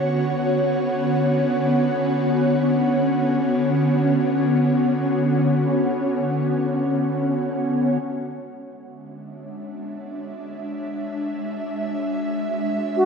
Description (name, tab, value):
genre	ambient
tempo	free time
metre	none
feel	none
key	D lydian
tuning	A4 = 440 Hz
part	ethereal airy pad	sustained chords	0.0-13.1 s	D3 to F#5	-20 LUFS	equal	ensemble chorus, built-in reverb
part	alto flute	melody	13.0-13.1 s	F#4	-15 LUFS	left 1 dB	none
room	wet lush hall reverb, RT60 2.5 s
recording	cassette tape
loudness	-19 LUFS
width	side -6 dB against mid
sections	0.0-8.0 A section; 8.0-13.1 B section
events	fade-in on ambient pad 8.0-13.1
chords	0.0 Bsus2/D; 8.0 Dmaj9#11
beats	free time